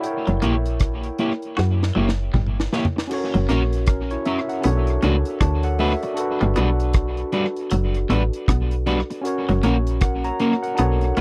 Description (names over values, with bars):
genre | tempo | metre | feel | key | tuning
lovers rock reggae | 78 BPM | 4/4 | swing 61% on 16ths | unclear | A4 = 440 Hz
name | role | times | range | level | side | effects
barky tine electric piano | accompaniment | 0.0-11.2 s | C#4 to A#5 | -28 LUFS | equal | overdrive, tape echo
deep reggae drum kit | drums | 0.0-11.2 s | crash cymbal, hi-hat, kick drum, rim click, snare drum, toms | -26 LUFS | equal | tape echo
twangy electric guitar | riff | 0.3-11.2 s | F#3 to F#4 | -31 LUFS | equal | none
woody FM bass | bass | 0.3-11.2 s | F#1 to F#2 | -23 LUFS | equal | none
electric guitar at the edge of break-up | stabs | 0.4-11.2 s | G3 to C#5 | -28 LUFS | equal | lush chorus, tape echo
room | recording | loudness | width
little or no reverb | dry, close 1970s-style studio recording | -21 LUFS | mono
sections
0.0-3.1 A section; 3.1-11.2 B section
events
drum fill 1.6-3.1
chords
0.0 F#7b9; 3.1 F#; 4.6 Bm7; 6.2 Gmaj7; 9.2 F#